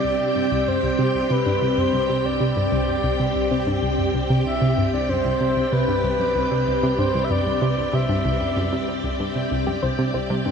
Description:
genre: ambient, sequencer-driven space music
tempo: 95 BPM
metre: 4/4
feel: straight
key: C lydian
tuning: A4 = 441 Hz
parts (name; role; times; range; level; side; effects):
- breathy flute-like synth lead; melody; 0.0-9.2 s; B4 to E5; -24 LUFS; equal; chorus, ping-pong delay
- string machine, full ensemble; sustained chords; 0.0-10.5 s; C4 to G5; -24 LUFS; equal; ensemble chorus
- analog pluck; riff; 0.0-10.5 s; C2 to C3; -24 LUFS; equal; chorus, vintage 12-bit sampler grit, ping-pong delay
- round analog bass; bass; 0.0-10.5 s; C2; -38 LUFS; equal; none
- soft round pluck; arpeggios; 9.7-10.4 s; G3 to C5; -27 LUFS; left 2 dB; chorus, auto-pan, ping-pong delay
room: wet huge ambient reverb, RT60 7.9 s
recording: none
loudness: -19 LUFS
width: side -6 dB against mid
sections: 0.0-10.5 A section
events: fade-in on analog synth bass 0.0-10.5; filter sweep on synth arpeggio sound 0.0-10.5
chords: 0.0 Cadd9

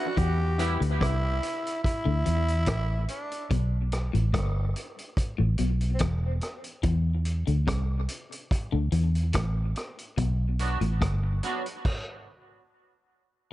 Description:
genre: dub reggae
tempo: 72 BPM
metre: 4/4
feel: straight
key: E minor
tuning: A4 = 440 Hz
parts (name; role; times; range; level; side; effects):
- growling tenor saxophone; melody; 0.0-6.0 s; C4 to G4; -32 LUFS; right 1 dB; tape echo
- warm upright piano; stabs; 0.0-0.8 s; E4 to B4; -37 LUFS; left 4 dB; tape echo
- clean electric guitar; riff; 0.2-11.3 s; E2 to E3; -34 LUFS; left 5 dB; tape echo
- vintage muted fingered electric bass; bass; 0.2-11.4 s; E1 to E2; -25 LUFS; equal; none
- vintage drum kit; drums; 0.2-12.1 s; crash cymbal, hi-hat, kick drum, rim click; -31 LUFS; equal; none
- twangy electric guitar; accompaniment; 0.6-0.8, 10.6-11.6 s; F#3 to G4; -35 LUFS; right 3 dB; analog chorus, tape echo
room: little or no reverb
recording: echo-heavy mix, nothing above 10.5 kHz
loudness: -25 LUFS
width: side -16 dB against mid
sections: 0.0-13.5 A section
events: break 0.0; stop 11.8-13.5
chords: 0.2 Em; 3.5 Emadd11; 6.8 Amadd11; 10.2 Bm

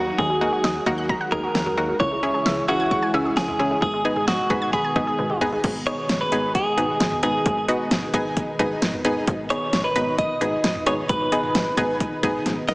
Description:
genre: synth-pop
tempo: 132 BPM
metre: 4/4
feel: straight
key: G# minor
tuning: A4 = 442 Hz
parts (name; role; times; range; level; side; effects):
- direct-recorded clean electric guitar; melody; 0.0-12.7 s; F#4 to D#5; -24 LUFS; equal; digital delay
- analog pluck; accompaniment; 0.0-12.7 s; A#3 to B4; -25 LUFS; equal; chorus
- ensemble organ-string; sustained chords; 0.0-12.7 s; A#2 to F#4; -30 LUFS; equal; ensemble chorus
- analog pluck; arpeggios; 0.0-5.6 s; D#3 to G#6; -29 LUFS; equal; chorus, digital delay
- slap-like FM bass; bass; 0.0-12.7 s; G#1 to D#2; -32 LUFS; equal; none
- pop drum kit; drums; 0.2-12.7 s; crash cymbal, hi-hat, kick drum, snare drum, toms; -25 LUFS; equal; overdrive
room: wet lush hall reverb, RT60 1.8 s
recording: heavily compressed radio sound, small speaker sound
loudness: -20 LUFS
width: side -25 dB against mid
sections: 0.0-5.6 A section; 5.6-12.7 B section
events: drum fill 5.2-5.6, 12.5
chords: 0.0 D#m; 2.0 C#m; 3.8 G#m

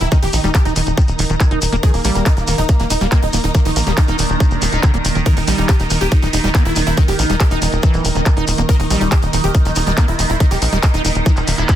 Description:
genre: psychedelic trance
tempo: 140 BPM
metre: 4/4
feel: straight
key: Eb major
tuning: A4 = 440 Hz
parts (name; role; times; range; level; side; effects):
- supersaw stab; melody; 0.0-11.8 s; Bb3 to Bb4; -23 LUFS; equal; phaser, sidechain pumping, dub echo
- overtone-sweeping drone; sustained chords; 0.0-11.8 s; Eb3; -23 LUFS; right 3 dB; chorus, built-in reverb, sidechain pumping
- tight sequencer bass; bass; 0.0-11.6 s; Eb1 to Bb1; -19 LUFS; equal; none
- drum and bass drum kit; drums; 0.0-11.8 s; handclaps, hi-hat; -23 LUFS; right 1 dB; none
- shekere; percussion; 0.0-11.8 s; none; -28 LUFS; left 4 dB; none
- impact and reverse cymbal; sound effects; 0.0-0.1, 11.4-11.8 s; none; -32 LUFS; right 1 dB; none
- dark studio string section; texture; 0.0-11.8 s; Bb3 to Bb5; -28 LUFS; right 1 dB; sidechain pumping
- liquid acid bass; riff; 0.1-11.6 s; D3 to Fb4; -24 LUFS; equal; chorus, auto-pan, sidechain pumping, dub echo
- electronic kick drum; drums; 0.1-11.8 s; none; -12 LUFS; equal; none
room: little or no reverb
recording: dense, heavily limited modern master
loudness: -13 LUFS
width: side -11 dB against mid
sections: 0.0-11.8 A section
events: reverse cymbal 11.4-11.8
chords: 0.0 Eb5

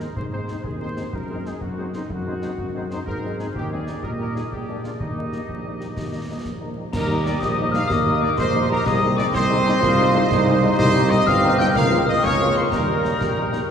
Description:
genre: military-style march for wind band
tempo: 124 BPM (dotted quarters)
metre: 6/8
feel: straight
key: Eb major from 3.1 s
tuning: A4 = 438 Hz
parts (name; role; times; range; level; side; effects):
- clear trumpet section; melody; 0.0-13.7 s; Eb4 to G5; -27 LUFS; right 1 dB; none
- warm woodwind section; second line; 0.0-13.7 s; G4 to G5; -30 LUFS; equal; none
- warm French horn section; accompaniment; 0.0-13.6 s; F3 to F4; -30 LUFS; left 3 dB; none
- mellow tuba; bass; 0.0-13.6 s; G1 to Bb2; -24 LUFS; right 1 dB; none
- concert snare drum, concert bass drum and clash cymbals; drums; 0.0-13.7 s; none; -29 LUFS; left 1 dB; none
- glockenspiel with rubber mallets; second line; 6.9-13.7 s; Bb5 to G6; -25 LUFS; left 6 dB; none
- piccolo; second line; 6.9-13.7 s; Bb5 to G6; -27 LUFS; left 1 dB; none
- dark trombone section; sustained chords; 6.9-13.7 s; G3 to F4; -25 LUFS; right 2 dB; none
room: wet cathedral reverb, RT60 5.0 s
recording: recorded in a church or concert hall, vinyl crackle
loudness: -19 LUFS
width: side -7 dB against mid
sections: 0.0-6.9 A section; 6.9-13.7 B section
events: none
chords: 0.0 Ab; 1.1 Ab7/Gb; 3.1 Ab; 4.0 Eb/Bb; 4.5 Bb7; 5.0 Eb; 8.9 Ab/C; 10.8 Cm; 11.8 Bbm/Db; 12.7 Eb

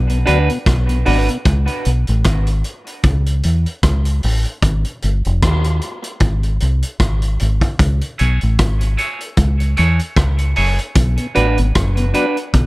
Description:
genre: dub reggae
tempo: 76 BPM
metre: 4/4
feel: swing 57% on 16ths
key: C# phrygian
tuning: A4 = 440 Hz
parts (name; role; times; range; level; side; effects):
- deep dub fingered electric bass; bass; 0.0-12.7 s; E#1 to E2; -15 LUFS; equal; none
- tonewheel organ; accompaniment; 0.1-1.4, 8.0-12.3 s; B2 to E4; -25 LUFS; left 2 dB; slow rotary speaker, high-pass filter
- vintage drum kit; drums; 0.1-12.7 s; hi-hat, kick drum, rim click; -19 LUFS; equal; none
- clean electric guitar; accompaniment; 0.3-1.3, 8.2-12.4 s; D4 to C#5; -21 LUFS; right 3 dB; high-pass filter, dub echo
room: small room ambience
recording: echo-heavy mix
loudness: -14 LUFS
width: side -21 dB against mid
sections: 0.0-12.7 A section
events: none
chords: 0.0 Bm; 1.5 C#5; 4.6 G#5; 7.8 C#m; 11.0 Bm

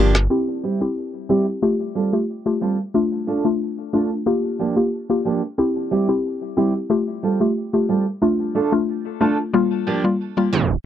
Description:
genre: dancehall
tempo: 91 BPM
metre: 4/4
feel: straight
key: unclear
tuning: A4 = 441 Hz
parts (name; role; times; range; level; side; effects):
- mallet-like synth pluck; accompaniment; 0.0-10.5 s; G3 to G4; -20 LUFS; left 2 dB; chorus
- picked steel-string acoustic guitar; arpeggios; 0.0-10.7 s; F3 to A4; -22 LUFS; right 4 dB; ping-pong delay
room: light reverb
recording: dark, warm production, low-pass filter, tape stop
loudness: -18 LUFS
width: side -10 dB against mid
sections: 0.3-10.9 A section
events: filter sweep 0.3-10.9; tape stop 10.5-10.9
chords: 0.3 C; 1.6 Fadd9; 2.9 Dm; 4.3 Gm7; 5.6 C; 6.9 Fadd9; 8.2 Dm; 9.5 Gm7

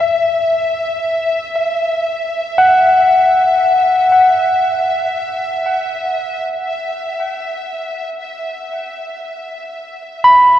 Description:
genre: ambient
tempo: free time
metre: none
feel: none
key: unclear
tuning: A4 = 441 Hz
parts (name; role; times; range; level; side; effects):
- barky tine electric piano; arpeggios; 0.0-10.6 s; E5 to B5; -13 LUFS; left 1 dB; ping-pong delay
- warm studio violin section; texture; 0.0-10.6 s; E5; -22 LUFS; left 1 dB; none
room: wet huge ambient reverb, RT60 8.0 s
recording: worn, warbling old tape, cassette tape, warbly pitch drift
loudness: -13 LUFS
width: side -11 dB against mid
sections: 0.0-10.6 A section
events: fade-out on violin section 0.0-10.6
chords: 0.0 Esus2

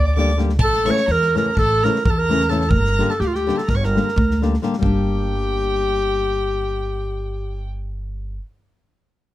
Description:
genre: balkan folk, Balkan wedding band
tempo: 256 BPM (eighths)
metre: 9/8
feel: straight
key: G dorian sharp4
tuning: A4 = 439 Hz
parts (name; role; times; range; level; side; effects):
- warm clarinet; melody; 0.0-7.7 s; F4 to D5; -21 LUFS; equal; plate reverb
- bright violin; second line; 0.0-7.7 s; F5 to D6; -29 LUFS; right 3 dB; none
- upright bass; bass; 0.0-8.4 s; G1 to E2; -22 LUFS; equal; none
- flamenco guitar; accompaniment; 0.2-8.4 s; C#3 to G4; -23 LUFS; left 4 dB; none
- natural country drum kit; percussion; 0.2-5.1 s; kick drum, snare drum; -23 LUFS; equal; none
room: light reverb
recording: dark, warm production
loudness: -17 LUFS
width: side -14 dB against mid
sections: 0.0-4.8 A section; 4.8-6.9 B section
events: none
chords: 0.0 Gm; 0.6 A; 2.7 Gm

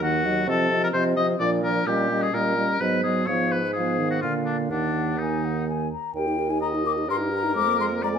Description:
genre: quick classical-period movement for wind quintet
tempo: 128 BPM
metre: 3/4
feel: straight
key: Eb minor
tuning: A4 = 440 Hz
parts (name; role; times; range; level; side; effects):
- mellow hollow silver concert flute; melody; 0.0-8.2 s; D5 to D6; -29 LUFS; left 8 dB; none
- clear oboe; second line; 0.0-8.2 s; D4 to Eb5; -26 LUFS; left 3 dB; none
- dark clarinet; accompaniment; 0.0-8.2 s; Bb3 to Bb4; -31 LUFS; right 9 dB; none
- mellow French horn; accompaniment; 0.0-8.2 s; D3 to G4; -29 LUFS; right 1 dB; none
- mellow bassoon; bass; 0.0-8.2 s; Eb2 to C3; -28 LUFS; right 3 dB; none
room: moderate large studio reverb, RT60 1.3 s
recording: none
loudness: -21 LUFS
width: side -7 dB against mid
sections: 0.0-6.2 A section; 6.2-8.2 A section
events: none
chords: 0.5 F5/C; 1.4 Bb; 1.9 Eb7/Bb; 2.8 Abm7; 3.3 Fdim/Ab; 4.2 Bb; 4.7 Ebm; 6.2 Eb; 7.1 Eb/G; 7.6 Bb7/F

